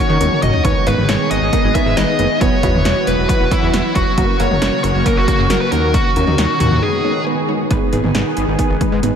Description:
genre	synth-pop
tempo	136 BPM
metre	4/4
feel	straight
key	G# minor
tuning	A4 = 440 Hz
part	dark smooth lead guitar	melody	0.0-7.2 s	E4 to E5	-19 LUFS	left 1 dB	overdrive, analog delay
part	funky polysynth comp	accompaniment	0.0-9.2 s	F#3 to C#5	-21 LUFS	right 1 dB	chorus
part	lush unison pad	sustained chords	0.0-9.2 s	C#3 to G#4	-21 LUFS	right 1 dB	chorus, phaser
part	fat analog bass	bass	0.1-9.1 s	E1 to D#3	-19 LUFS	equal	none
part	punchy analog drum machine	drums	0.2-9.1 s	cowbell, hi-hat, kick drum, snare drum, toms	-18 LUFS	equal	overdrive
part	warbly dusty pluck	arpeggios	7.7-9.2 s	G#3 to G#5	-24 LUFS	equal	chorus, analog delay
room	moderate cathedral reverb, RT60 6.2 s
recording	dreamy mix soaked in reverb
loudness	-13 LUFS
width	side -8 dB against mid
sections	0.0-7.7 A section; 7.7-9.2 B section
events	drum fill 0.2-0.6; break 6.8-7.7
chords	0.0 D#m7; 0.6 G#m; 2.4 Esus2; 4.2 F#; 5.7 D#m7; 6.8 G#m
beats	0.21 | 0.65 1.09 1.53 1.97 | 2.41 2.85 3.29 3.73 | 4.18 4.62 5.06 5.50 | 5.94 6.38 6.82 7.26 | 7.71 8.15 8.59 9.03

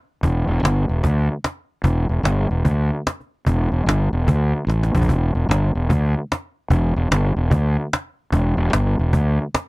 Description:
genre	blues rock power trio and southern rock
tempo	148 BPM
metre	4/4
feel	swing 64% on 8ths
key	E minor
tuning	A4 = 439 Hz
part	fuzz fingered electric bass	bass	0.2-9.4 s	E1 to D2	-18 LUFS	equal	overdrive
part	cajon	drums	0.2-9.7 s	none	-20 LUFS	equal	none
room	little or no reverb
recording	dry, close 1970s-style studio recording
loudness	-18 LUFS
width	side -24 dB against mid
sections	0.0-9.7 A section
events	drum fill 4.7-5.1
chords	none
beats	| 0.23 0.63 1.04 1.44 | 1.85 2.25 2.66 3.06 | 3.47 3.87 4.28 4.68 | 5.09 5.49 5.89 6.30 | 6.70 7.11 7.51 7.92 | 8.32 8.73 9.13 9.54

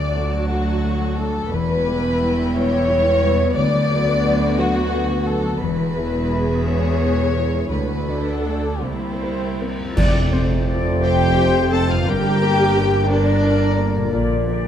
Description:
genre	cinematic, emotional film score for orchestra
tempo	58 BPM (dotted quarters)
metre	6/8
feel	rubato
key	unclear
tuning	A4 = 439 Hz
part	rich chamber violin section	melody	0.0-14.1 s	D5 to A5	-29 LUFS	left 6 dB	none
part	warm chamber violin section	second line	0.0-14.1 s	D4 to D5	-24 LUFS	left 2 dB	none
part	dark concert grand piano	accompaniment	0.0-14.7 s	C2 to D5	-27 LUFS	left 2 dB	none
part	dark symphonic viola section	accompaniment	0.0-14.1 s	F#3 to C5	-25 LUFS	equal	none
part	concert harp	arpeggios	0.0-14.7 s	F2 to D6	-28 LUFS	left 6 dB	none
part	rich symphonic double bass section	bass	0.0-14.7 s	E1 to D2	-24 LUFS	right 3 dB	none
part	warm symphonic cello section	bass	0.0-14.7 s	C2 to Bb2	-24 LUFS	right 2 dB	none
part	cymbal swell, clash cymbals and concert bass drum	percussion	5.6-11.3 s	none	-25 LUFS	right 1 dB	none
part	small flute group	second line	10.0-14.7 s	Bb4 to D5	-26 LUFS	left 1 dB	none
part	mellow French horn section	sustained chords	10.0-14.7 s	D3 to Bb4	-24 LUFS	left 4 dB	none
part	timpani	percussion	10.0-11.0 s	F2	-26 LUFS	equal	none
room	moderate concert hall reverb, RT60 1.8 s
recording	dark, warm production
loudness	-17 LUFS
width	side -9 dB against mid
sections	0.0-10.0 A section; 10.0-14.7 B section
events	band accent 10.0-10.7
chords	0.0 D; 1.5 Em; 3.6 Bm/D; 5.6 E; 7.7 D; 8.8 C7; 10.0 Fadd9; 12.1 Gm; 14.1 Bb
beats	0.50 | 1.52 2.54 | 3.56 4.58 | 5.62 6.67 | 7.73 8.85 | 9.97 11.03 | 12.07 13.11 | 14.13

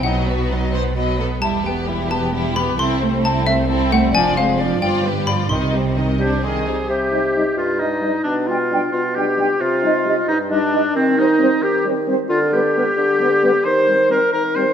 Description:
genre	cinematic, playful, whimsical film cue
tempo	88 BPM (dotted quarters)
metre	6/8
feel	straight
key	C minor from 4.1 s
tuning	A4 = 444 Hz
part	warm studio violin section	melody	0.0-6.9 s	G4 to D#5	-27 LUFS	left 3 dB	none
part	xylophone with wooden mallets	melody	0.0-6.2 s	E5 to C6	-22 LUFS	left 4 dB	none
part	rich studio violin section	second line	0.0-6.7 s	C4 to C5	-26 LUFS	left 2 dB	none
part	clear studio viola section	accompaniment	0.0-6.9 s	Eb3 to C4	-23 LUFS	right 3 dB	none
part	rich studio cello section	bass	0.0-6.7 s	C2 to C3	-24 LUFS	right 1 dB	none
part	rich studio double bass section	bass	0.0-6.7 s	E1 to C2	-24 LUFS	right 2 dB	none
part	clear clarinet	second line	6.2-14.7 s	C4 to C5	-19 LUFS	left 2 dB	none
part	warm oboe	second line	6.2-14.7 s	C4 to C5	-22 LUFS	right 1 dB	none
part	mellow bassoon	accompaniment	6.9-14.7 s	G2 to Eb3	-22 LUFS	right 1 dB	none
part	small flute group	second line	7.1-14.6 s	B4 to G5	-24 LUFS	right 4 dB	none
part	mellow French horn section	sustained chords	7.1-14.6 s	G3 to Eb4	-25 LUFS	left 3 dB	none
room	wet scoring stage reverb, RT60 1.8 s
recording	none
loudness	-16 LUFS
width	side -8 dB against mid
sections	0.0-6.9 A section; 6.9-14.7 B section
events	none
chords	0.0 B; 1.4 Em; 2.8 Am/C; 4.1 Dm7b5/F; 4.8 G7; 5.5 Cm; 8.3 G7/B; 9.6 Cm; 11.0 Cm/Eb; 12.3 G/D; 13.7 Cm/Eb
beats	| 0.05 0.73 | 1.42 2.10 | 2.79 3.46 | 4.14 4.82 | 5.51 6.20 | 6.90 7.58 | 8.26 8.94 | 9.61 10.29 | 10.96 11.63 | 12.31 12.99 | 13.66 14.34

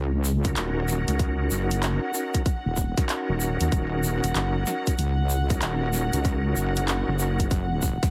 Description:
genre	glitch hop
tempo	95 BPM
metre	4/4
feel	swing 64% on 16ths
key	Eb minor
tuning	A4 = 439 Hz
part	wobble bass	bass	0.0-8.0 s	Eb1 to Eb2	-28 LUFS	equal	chorus
part	impact	sound effects	0.0-1.2 s	none	barely audible	none	none
part	tube shaker	percussion	0.2-8.1 s	none	-38 LUFS	equal	none
part	bright tonewheel organ	stabs	0.4-7.5 s	Db4 to Bb4	-33 LUFS	equal	chorus vibrato, fast rotary speaker, sidechain pumping, digital delay
part	drum and bass drum kit	drums	0.4-8.1 s	handclaps, hi-hat, snare drum	-34 LUFS	equal	none
part	electronic kick drum	drums	0.4-8.1 s	none	-27 LUFS	equal	none
part	dark chamber string section	texture	0.5-8.1 s	Gb5	-36 LUFS	equal	sidechain pumping
room	digital ambience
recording	heavily compressed radio sound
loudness	-25 LUFS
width	mono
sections	0.0-8.1 A section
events	impact 0.0-1.2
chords	0.0 Ebm7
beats	0.56 | 1.20 1.83 2.46 3.09 | 3.72 4.35 4.98 5.62 | 6.25 6.88 7.51

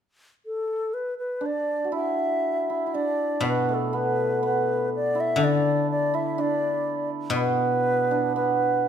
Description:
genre	chinese traditional, Chinese chamber ensemble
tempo	61 BPM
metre	2/4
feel	rubato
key	unclear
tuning	A4 = 439 Hz
part	xiao	melody	0.5-8.9 s	A4 to E5	-26 LUFS	left 2 dB	none
part	hammered dulcimer	second line	1.4-8.9 s	A3 to F#4	-26 LUFS	right 5 dB	none
part	guzheng	accompaniment	3.4-8.9 s	B2 to D3	-28 LUFS	left 3 dB	none
room	moderate recital hall reverb, RT60 1.4 s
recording	minimal, uncompressed stereo recording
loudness	-22 LUFS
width	side -8 dB against mid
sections	0.0-1.4 A section; 1.4-8.9 B section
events	none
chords	none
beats	0.43 | 1.42 2.44 | 3.44 4.43 | 5.40 6.37 | 7.35 8.34

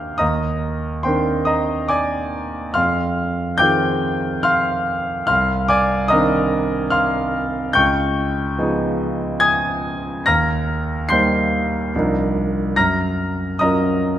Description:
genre	classical, impressionist solo piano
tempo	72 BPM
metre	3/4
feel	rubato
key	unclear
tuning	A4 = 439 Hz
part	clear concert grand piano	solo	0.0-14.2 s	C2 to C7	-17 LUFS	equal	none
room	moderate scoring stage reverb, RT60 1.8 s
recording	none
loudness	-17 LUFS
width	side -11 dB against mid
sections	0.0-14.2 A section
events	none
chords	0.2 Cm9/Eb; 2.8 Fm7; 5.3 Cm11; 7.8 Db9; 10.3 Eb6; 11.9 Cm11; 12.8 Gbmaj7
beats	| 0.21 1.07 1.93 | 2.78 3.62 4.46 | 5.30 6.12 6.93 | 7.75 8.58 9.42 | 10.27 11.09 11.93 | 12.76 13.62

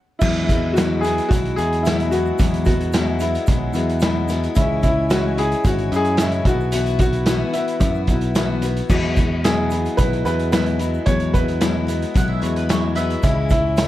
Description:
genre	folk rock and heartland rock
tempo	111 BPM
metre	4/4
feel	straight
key	E major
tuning	A4 = 440 Hz
part	warm concert grand piano	melody	0.2-13.9 s	E4 to C#5	-24 LUFS	equal	analog delay
part	picked steel-string acoustic guitar	accompaniment	0.2-13.9 s	E2 to F#4	-24 LUFS	left 6 dB	none
part	hand-pumped harmonium	sustained chords	0.2-13.9 s	E4 to G#5	-32 LUFS	right 4 dB	none
part	picked electric bass	bass	0.2-13.9 s	G#1 to F#2	-22 LUFS	right 1 dB	none
part	vintage drum kit	drums	0.2-13.9 s	crash cymbal, hi-hat, kick drum, snare drum	-21 LUFS	right 1 dB	none
part	egg shaker	percussion	0.2-13.9 s	none	-43 LUFS	right 8 dB	none
part	mandolin	second line	12.2-13.2 s	B4 to F#5	-28 LUFS	right 2 dB	none
room	light reverb, studio reverb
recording	dark, warm production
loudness	-17 LUFS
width	side -14 dB against mid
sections	0.2-13.9 A section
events	stop 0.0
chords	0.2 Eadd9; 4.6 C#m; 6.5 Bsus4; 8.9 Eadd9; 13.2 C#m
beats	| 0.22 0.76 1.31 1.85 | 2.39 2.94 3.48 4.02 | 4.56 5.11 5.65 6.19 | 6.73 7.27 7.81 8.36 | 8.90 9.44 9.98 10.52 | 11.07 11.61 12.15 12.69 | 13.24 13.78

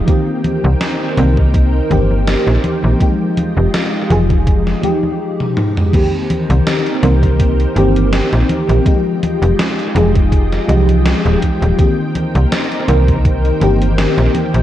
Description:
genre	vaporwave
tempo	82 BPM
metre	4/4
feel	swing 54% on 16ths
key	unclear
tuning	A4 = 440 Hz
part	FM electric piano with soft pad layer	accompaniment	0.0-14.6 s	Eb3 to Bb4	-17 LUFS	left 1 dB	phaser, analog chorus, tape echo
part	soft string machine	sustained chords	0.0-14.6 s	Ab3 to G5	-24 LUFS	equal	ensemble chorus
part	electronic kick drum	drums	0.1-13.4 s	none	-14 LUFS	equal	none
part	gated 80s digital drum machine	drums	0.1-14.6 s	congas, crash cymbal, hi-hat, snare drum, toms	-20 LUFS	equal	gated reverb, gated reverb snare, tape echo
part	slap-like FM bass	bass	0.6-14.6 s	Eb1 to C2	-14 LUFS	equal	none
room	light reverb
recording	echo-heavy mix, cassette tape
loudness	-12 LUFS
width	side -12 dB against mid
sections	0.0-5.9 A section; 5.9-14.6 B section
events	drum fill 5.4-5.9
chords	0.1 Cm7; 3.0 Fm9; 5.9 Cm7; 8.9 Fm9; 11.8 Cm7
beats	| 0.08 0.81 1.54 2.27 | 3.01 3.74 4.47 5.20 | 5.93 6.67 7.40 8.13 | 8.86 9.59 10.32 11.05 | 11.79 12.52 13.25 13.98

